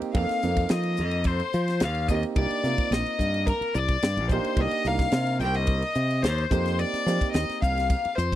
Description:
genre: electric jazz fusion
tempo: 108 BPM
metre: 4/4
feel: straight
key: unclear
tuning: A4 = 440 Hz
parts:
  - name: warm grand piano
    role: accompaniment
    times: 0.0-8.1 s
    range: Bb3 to Bb4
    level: -31 LUFS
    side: right 6 dB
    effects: none
  - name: modern bright fingered electric bass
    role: bass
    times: 0.0-8.4 s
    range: Bb1 to F3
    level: -26 LUFS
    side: equal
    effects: none
  - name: crisp fusion drum kit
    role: drums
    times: 0.0-8.4 s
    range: hi-hat, kick drum, ride cymbal, snare drum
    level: -27 LUFS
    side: equal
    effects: none
  - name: warm violin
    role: melody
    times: 0.1-8.4 s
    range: Bb4 to G5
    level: -29 LUFS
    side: left 1 dB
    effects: slapback echo
  - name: overdriven electric guitar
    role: second line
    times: 0.2-8.4 s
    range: Bb4 to G5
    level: -33 LUFS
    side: left 14 dB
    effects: none
room: little or no reverb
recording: dry, close 1970s-style studio recording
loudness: -23 LUFS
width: side -13 dB against mid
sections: 0.0-8.4 A section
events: none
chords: 0.0 F9sus4; 2.4 Cm9; 6.5 F9sus4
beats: | 0.15 0.71 1.26 1.81 | 2.37 2.92 3.47 4.03 | 4.58 5.13 5.69 6.24 | 6.79 7.35 7.90

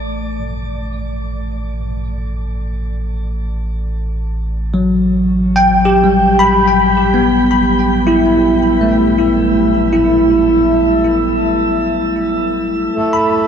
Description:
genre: ambient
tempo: free time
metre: none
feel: none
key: unclear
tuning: A4 = 440 Hz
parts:
  - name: bell-like tine electric piano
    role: arpeggios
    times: 0.0-13.5 s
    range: F#3 to B5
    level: -12 LUFS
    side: equal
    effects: ensemble chorus, ping-pong delay
  - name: round analog bass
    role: bass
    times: 0.0-13.5 s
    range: A1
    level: -21 LUFS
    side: right 1 dB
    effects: none
  - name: hand-pumped harmonium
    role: drone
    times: 13.0-13.5 s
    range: A3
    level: -14 LUFS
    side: right 3 dB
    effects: none
room: wet shimmer reverb, RT60 7.5 s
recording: dark, warm production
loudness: -12 LUFS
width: side -7 dB against mid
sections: 0.0-13.5 A section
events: fade-in on analog synth bass 0.0-13.5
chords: 0.0 G/A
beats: free time

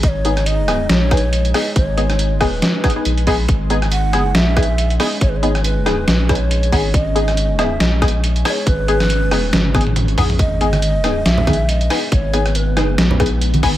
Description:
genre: deep dubstep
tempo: 139 BPM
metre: 4/4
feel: swing 56% on 16ths, half-time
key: G# minor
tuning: A4 = 441 Hz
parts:
  - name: breathy hollow long shakuhachi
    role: melody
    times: 0.0-13.2 s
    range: B4 to F#5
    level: -24 LUFS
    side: right 2 dB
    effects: dub echo
  - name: deep dark ambient pad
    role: sustained chords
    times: 0.0-13.8 s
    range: G#3 to D#4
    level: -27 LUFS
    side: equal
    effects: chorus, built-in reverb
  - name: soft dub sub bass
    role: bass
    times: 0.0-13.8 s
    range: G#1 to A#1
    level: -18 LUFS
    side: equal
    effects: none
  - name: electronic kick drum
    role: drums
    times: 0.0-13.7 s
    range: none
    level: -18 LUFS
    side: equal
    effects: none
  - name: trip hop sampler-style drum kit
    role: drums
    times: 0.0-13.7 s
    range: hi-hat, rim click, snare drum, toms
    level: -20 LUFS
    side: equal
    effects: overdrive
  - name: filtered dub chord stab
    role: stabs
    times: 0.2-13.7 s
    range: B3 to G#4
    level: -21 LUFS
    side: left 2 dB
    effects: analog chorus, cassette tape, dub echo
  - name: congas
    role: percussion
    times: 10.7-13.6 s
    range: none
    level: -21 LUFS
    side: right 2 dB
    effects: none
room: digital ambience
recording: vinyl crackle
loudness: -14 LUFS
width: side -13 dB against mid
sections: 0.0-13.8 A section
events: drum fill 9.5-10.4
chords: 0.0 G#m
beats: | 0.03 0.47 0.90 1.33 | 1.76 2.19 2.62 3.06 | 3.49 3.92 4.35 4.78 | 5.21 5.64 6.08 6.51 | 6.94 7.37 7.80 8.23 | 8.67 9.10 9.53 9.96 | 10.39 10.82 11.26 11.69 | 12.12 12.55 12.98 13.41

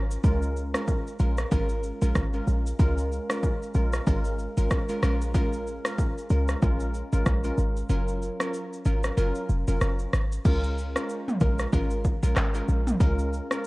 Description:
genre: afrobeats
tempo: 94 BPM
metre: 4/4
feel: swing 58% on 16ths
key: Db major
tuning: A4 = 440 Hz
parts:
  - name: short 808-style bass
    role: bass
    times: 0.0-13.4 s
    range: F1 to Db2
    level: -25 LUFS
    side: equal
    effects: none
  - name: deep house drum kit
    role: drums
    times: 0.1-13.7 s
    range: crash cymbal, handclaps, kick drum, rim click, shaker, toms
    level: -27 LUFS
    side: equal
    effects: none
  - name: glassy wavetable pluck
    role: accompaniment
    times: 0.2-13.7 s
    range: Gb3 to Bb4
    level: -31 LUFS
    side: equal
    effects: chorus
room: digital ambience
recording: worn, warbling old tape, cassette tape, warbly pitch drift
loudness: -24 LUFS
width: side -22 dB against mid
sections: 0.0-10.5 A section; 10.5-13.7 B section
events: kick muted 7.9-10.5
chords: 0.2 Db6; 7.9 Gbmaj7; 10.5 Db6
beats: | 0.24 0.88 1.52 2.15 | 2.79 3.43 4.07 4.71 | 5.35 5.98 6.62 7.26 | 7.90 8.54 9.18 9.81 | 10.45 11.09 11.73 12.37 | 13.01 13.64

